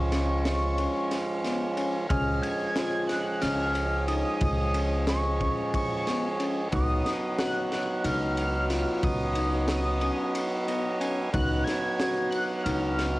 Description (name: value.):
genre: progressive instrumental, band music in an uneven meter.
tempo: 182 BPM (eighths).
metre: 7/8.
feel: straight.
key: Db mixolydian.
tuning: A4 = 439 Hz.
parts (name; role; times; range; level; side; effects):
pulse-width lead; melody; 0.0-13.2 s; Db6 to Ab6; -33 LUFS; equal; chorus, cassette tape, tape echo.
percussive tonewheel organ; accompaniment; 0.0-13.2 s; F3 to Ab5; -30 LUFS; right 2 dB; overdrive, cassette tape.
upright bass; bass; 0.0-13.2 s; Db2; -29 LUFS; equal; none.
overdriven tine electric piano; arpeggios; 0.1-13.0 s; Cb4 to Gb4; -33 LUFS; left 3 dB; cassette tape.
crunchy breakbeat drum kit; drums; 0.1-13.1 s; kick drum, ride cymbal, snare drum; -32 LUFS; equal; cassette tape.
room: light reverb, small room reverb.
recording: home recording on cassette.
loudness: -25 LUFS.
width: side -19 dB against mid.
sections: 0.0-13.2 A section.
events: tonewheel organ fill 10.4-11.3.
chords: 0.0 Db; 6.7 Cb/Db.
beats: 0.13 0.46 0.79 1.12 1.45 1.78 | 2.11 2.44 2.77 3.10 3.43 3.76 4.09 | 4.42 4.75 5.08 5.41 5.74 6.07 6.39 | 6.72 7.05 7.38 7.71 8.04 8.37 8.70 | 9.03 9.36 9.69 10.02 10.35 10.68 11.01 | 11.34 11.67 12.00 12.33 12.66 12.99.